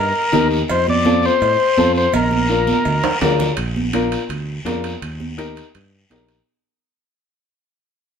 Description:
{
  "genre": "latin, cumbia",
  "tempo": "166 BPM",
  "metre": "4/4",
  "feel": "straight",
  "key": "Bb major",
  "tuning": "A4 = 440 Hz",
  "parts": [
    { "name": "combo organ", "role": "melody", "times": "0.0-3.2 s", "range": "Bb4 to D5", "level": "-17 LUFS", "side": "left 2 dB", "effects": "none" },
    { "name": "fingered electric bass", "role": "bass", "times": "0.0-6.4 s", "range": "Bb1 to A2", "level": "-23 LUFS", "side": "right 2 dB", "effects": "none" },
    { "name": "warm upright piano", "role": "accompaniment", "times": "0.3-6.4 s", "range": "C4 to Bb4", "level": "-21 LUFS", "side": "left 4 dB", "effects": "none" },
    { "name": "congas", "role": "percussion", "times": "0.3-6.3 s", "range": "none", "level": "-23 LUFS", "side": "right 4 dB", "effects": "none" },
    { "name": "guiro", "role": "percussion", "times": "0.3-6.5 s", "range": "none", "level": "-29 LUFS", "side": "left 2 dB", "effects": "none" },
    { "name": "cowbell and timbales", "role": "percussion", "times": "0.7-6.5 s", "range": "none", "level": "-26 LUFS", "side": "right 4 dB", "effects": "none" }
  ],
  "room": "moderate stone room reverb, RT60 1.1 s",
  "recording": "band playing live in one room",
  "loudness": "-15 LUFS",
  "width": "side -7 dB against mid",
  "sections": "0.0-3.6 A section; 3.6-6.5 B section",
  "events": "drum fill 2.1-3.6; fade-out 3.6-6.5",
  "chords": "0.0 Eb; 0.7 F; 2.1 Bb; 5.0 Eb",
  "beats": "0.33 | 0.69 1.05 1.41 1.77 | 2.13 2.49 2.85 3.21 | 3.57 3.94 4.30 4.66 | 5.02 5.38 5.74 6.11"
}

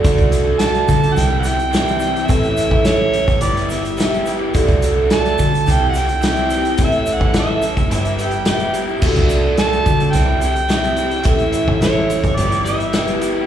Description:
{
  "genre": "folk rock and heartland rock",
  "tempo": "107 BPM",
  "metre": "4/4",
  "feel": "straight",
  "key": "unclear",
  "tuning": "A4 = 436 Hz",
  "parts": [
    { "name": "picked twelve-string acoustic guitar", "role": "accompaniment", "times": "0.0-13.5 s", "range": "A2 to G4", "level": "-20 LUFS", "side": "equal", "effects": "plate reverb, slapback echo" },
    { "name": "raw garage guitar", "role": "riff", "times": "0.0-13.5 s", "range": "A2 to A4", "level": "-23 LUFS", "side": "right 1 dB", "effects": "overdrive, slapback echo" },
    { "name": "deep dub fingered electric bass", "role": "bass", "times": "0.0-13.5 s", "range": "F#1 to D3", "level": "-20 LUFS", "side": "equal", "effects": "none" },
    { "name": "vintage drum kit", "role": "drums", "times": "0.0-13.3 s", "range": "crash cymbal, hi-hat, kick drum, snare drum", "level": "-20 LUFS", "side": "equal", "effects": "none" },
    { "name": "egg shaker", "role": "percussion", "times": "0.0-13.3 s", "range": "none", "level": "-40 LUFS", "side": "right 5 dB", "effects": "none" },
    { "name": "mellow harmonica", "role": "melody", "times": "0.6-13.2 s", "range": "C#5 to A5", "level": "-21 LUFS", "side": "right 3 dB", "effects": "plate reverb, slapback echo" }
  ],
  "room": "light reverb",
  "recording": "live gig heard through the venue's PA, recital hall reverb, small room reverb",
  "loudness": "-14 LUFS",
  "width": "side -10 dB against mid",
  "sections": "0.0-13.5 A section",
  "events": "none",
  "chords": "0.0 D; 1.2 C; 2.3 A; 3.4 Em/G; 4.5 D; 5.7 C; 6.8 A; 7.9 Em/G; 9.0 D; 10.1 C; 11.3 A; 12.4 Em/G",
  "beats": "| 0.05 0.61 1.17 1.73 | 2.30 2.86 3.42 3.98 | 4.54 5.10 5.66 6.22 | 6.78 7.34 7.90 8.46 | 9.02 9.58 10.14 10.70 | 11.26 11.82 12.38 12.93"
}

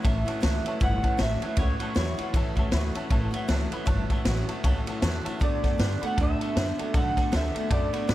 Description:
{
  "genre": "rockabilly",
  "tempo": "157 BPM",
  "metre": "4/4",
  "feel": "swing 60% on 8ths",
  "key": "A major",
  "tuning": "A4 = 440 Hz",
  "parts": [
    { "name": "honky-tonk upright piano", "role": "accompaniment", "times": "0.0-8.1 s", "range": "C#5 to B5", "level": "-39 LUFS", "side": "left 3 dB", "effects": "none" },
    { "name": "picked steel-string acoustic guitar", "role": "accompaniment", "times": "0.0-8.1 s", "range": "A2 to A4", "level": "-37 LUFS", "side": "left 2 dB", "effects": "none" },
    { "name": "electric guitar through a small old amp", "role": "riff", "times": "0.0-8.1 s", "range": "A2 to B3", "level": "-32 LUFS", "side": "equal", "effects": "lush chorus" },
    { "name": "vintage drum kit", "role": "drums", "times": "0.0-8.1 s", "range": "kick drum, ride cymbal, snare drum", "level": "-27 LUFS", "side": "equal", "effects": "none" },
    { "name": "electric guitar through a small old amp", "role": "melody", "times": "0.1-8.1 s", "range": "C#5 to F#5", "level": "-32 LUFS", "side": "right 2 dB", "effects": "analog chorus, analog delay" },
    { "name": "upright bass", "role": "bass", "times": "0.1-8.1 s", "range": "G1 to A2", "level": "-28 LUFS", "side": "equal", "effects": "none" }
  ],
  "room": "light reverb, small room ambience",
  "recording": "none",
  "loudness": "-24 LUFS",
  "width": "side -15 dB against mid",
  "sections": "0.0-8.1 A section",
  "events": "honky-tonk piano fill 4.3-5.4",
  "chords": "0.0 A6; 5.4 D6",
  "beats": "0.04 0.43 | 0.81 1.19 1.58 1.96 | 2.34 2.73 3.11 3.49 | 3.88 4.26 4.64 5.02 | 5.41 5.79 6.17 6.56 | 6.94 7.32 7.71 8.09"
}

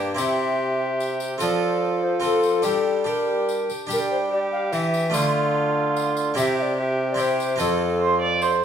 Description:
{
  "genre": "classical, renaissance-style consort dance",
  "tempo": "146 BPM",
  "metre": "3/4",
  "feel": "straight",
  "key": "unclear",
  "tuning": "A4 = 440 Hz",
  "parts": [
    { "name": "mellow hollow tenor recorder", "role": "melody", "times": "0.0-8.6 s", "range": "A4 to F5", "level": "-25 LUFS", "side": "left 4 dB", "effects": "none" },
    { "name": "rich viola", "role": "second line", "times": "0.0-8.6 s", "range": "F4 to D5", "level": "-27 LUFS", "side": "right 4 dB", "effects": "none" },
    { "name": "harpsichord", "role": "accompaniment", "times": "0.0-8.6 s", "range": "F2 to A4", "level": "-26 LUFS", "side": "left 1 dB", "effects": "none" },
    { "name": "clear bassoon", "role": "bass", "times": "0.0-8.6 s", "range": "F2 to G3", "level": "-26 LUFS", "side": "right 2 dB", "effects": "none" },
    { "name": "tambourine", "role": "percussion", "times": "0.2-8.6 s", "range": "none", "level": "-36 LUFS", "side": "left 4 dB", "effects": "none" }
  ],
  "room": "wet stone room reverb, RT60 1.1 s",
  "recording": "heard from further back in the room",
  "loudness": "-20 LUFS",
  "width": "side -8 dB against mid",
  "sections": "0.0-3.9 A section; 3.9-8.6 A section",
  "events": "none",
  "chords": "0.2 C; 1.4 F; 2.7 Gm; 3.9 G5; 5.1 Dm; 6.4 C; 7.6 F",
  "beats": "| 0.19 0.60 1.01 | 1.42 1.83 2.24 | 2.65 3.07 3.49 | 3.90 4.32 4.73 | 5.14 5.55 5.96 | 6.36 6.77 7.18 | 7.59 8.01 8.42"
}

